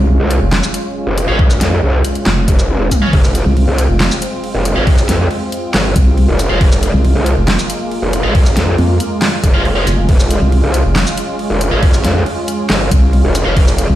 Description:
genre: heavy wobble dubstep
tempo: 138 BPM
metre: 4/4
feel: half-time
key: F minor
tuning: A4 = 440 Hz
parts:
  - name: supersaw pad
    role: sustained chords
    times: 0.0-14.0 s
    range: Ab3 to F4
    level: -20 LUFS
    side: right 1 dB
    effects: sidechain pumping, low-pass filter
  - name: vowel-sweep wobble bass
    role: bass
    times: 0.0-14.0 s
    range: F1 to F2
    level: -12 LUFS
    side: equal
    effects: chorus, overdrive
  - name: growl bass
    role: bass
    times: 0.2-13.9 s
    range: F1 to F2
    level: -14 LUFS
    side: equal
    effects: chorus, overdrive
  - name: dubstep drum kit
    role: drums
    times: 0.3-13.9 s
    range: crash cymbal, handclaps, hi-hat, shaker, snare drum, toms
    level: -19 LUFS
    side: equal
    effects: overdrive
  - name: scooped high-gain guitar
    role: stabs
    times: 1.3-13.5 s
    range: C4 to F5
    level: -22 LUFS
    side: equal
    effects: distortion, ping-pong delay
  - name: electronic kick drum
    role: drums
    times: 1.4-13.7 s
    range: none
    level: -11 LUFS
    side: equal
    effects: overdrive
room: little or no reverb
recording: played on a big sound system in a bare room, stone room reverb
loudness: -11 LUFS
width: side -13 dB against mid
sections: 0.0-14.0 A section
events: drum fill 2.7-3.1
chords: 0.0 Db/F; 3.1 Fm; 10.1 Db/F

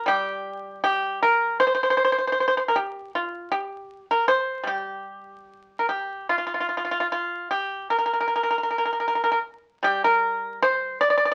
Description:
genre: chinese traditional, Chinese solo plucked strings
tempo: 77 BPM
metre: 4/4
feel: rubato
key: unclear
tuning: A4 = 440 Hz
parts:
  - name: pipa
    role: solo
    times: 0.0-11.3 s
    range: F3 to D5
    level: -24 LUFS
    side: equal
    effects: none
room: moderate club reverb, RT60 0.7 s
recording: very old 78 rpm record, vinyl crackle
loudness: -24 LUFS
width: mono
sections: 0.0-11.3 A section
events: none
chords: none

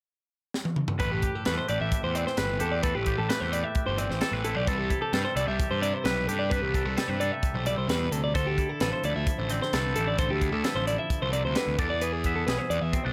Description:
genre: math rock and midwest emo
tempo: 131 BPM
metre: 4/4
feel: straight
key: A minor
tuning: A4 = 439 Hz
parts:
  - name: crisp fusion drum kit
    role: drums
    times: 0.5-13.0 s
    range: hi-hat, kick drum, snare drum, toms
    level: -33 LUFS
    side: equal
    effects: none
  - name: twangy electric guitar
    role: accompaniment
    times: 1.0-13.1 s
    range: A2 to E5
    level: -34 LUFS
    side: equal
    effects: spring reverb
  - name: clean electric guitar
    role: arpeggios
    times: 1.0-13.1 s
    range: G4 to E5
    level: -33 LUFS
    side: equal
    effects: none
  - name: fuzz picked electric bass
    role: bass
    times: 1.0-13.1 s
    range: G1 to G2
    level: -33 LUFS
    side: equal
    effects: overdrive
room: light reverb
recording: none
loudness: -28 LUFS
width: mono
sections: 1.0-13.1 A section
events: drum fill 0.5-1.0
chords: 0.0 N.C.; 1.0 Am9; 4.7 Cmaj13; 8.3 Dm11; 11.8 E7

